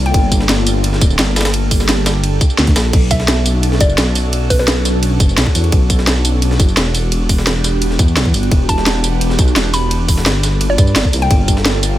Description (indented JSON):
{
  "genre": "liquid drum and bass",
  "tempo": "172 BPM",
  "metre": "4/4",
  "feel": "straight",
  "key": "B minor",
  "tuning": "A4 = 440 Hz",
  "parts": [
    { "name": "airy breathy pad", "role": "sustained chords", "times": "0.0-12.0 s", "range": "Bb3 to A4", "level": "-22 LUFS", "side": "equal", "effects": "chorus, phaser, sidechain pumping" },
    { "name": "dark detuned saw bass", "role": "bass", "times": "0.0-12.0 s", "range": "D1 to G2", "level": "-16 LUFS", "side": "equal", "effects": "none" },
    { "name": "hollow square pluck", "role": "melody", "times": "0.1-0.3, 3.1-4.6, 8.7-11.5 s", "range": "B4 to B5", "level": "-23 LUFS", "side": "left 1 dB", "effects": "chorus, cassette tape, dub echo" },
    { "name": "breakbeat sampler-style drum kit", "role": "drums", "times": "0.1-11.9 s", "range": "hi-hat, ride cymbal, snare drum", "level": "-23 LUFS", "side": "equal", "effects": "high-pass filter on cymbals, high-pass filter on hats, high-pass filter on snare" },
    { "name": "drum and bass drum kit", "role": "drums", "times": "0.1-11.9 s", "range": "crash cymbal, hi-hat, ride cymbal, snare drum, tambourine", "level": "-18 LUFS", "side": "equal", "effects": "none" },
    { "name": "electronic kick drum", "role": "drums", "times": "0.1-11.6 s", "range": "none", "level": "-13 LUFS", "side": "equal", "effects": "none" }
  ],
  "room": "little or no reverb",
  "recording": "none",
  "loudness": "-11 LUFS",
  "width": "side -14 dB against mid",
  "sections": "0.0-12.0 A section",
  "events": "none",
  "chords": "0.0 Gm7; 2.9 Bm7; 6.9 Em7; 10.4 Gm7",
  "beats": "| 0.14 0.49 0.84 1.19 | 1.54 1.89 2.24 2.58 | 2.93 3.28 3.63 3.98 | 4.33 4.68 5.03 5.38 | 5.72 6.07 6.42 6.77 | 7.12 7.47 7.82 8.17 | 8.52 8.86 9.21 9.56 | 9.91 10.26 10.61 10.96 | 11.31 11.65"
}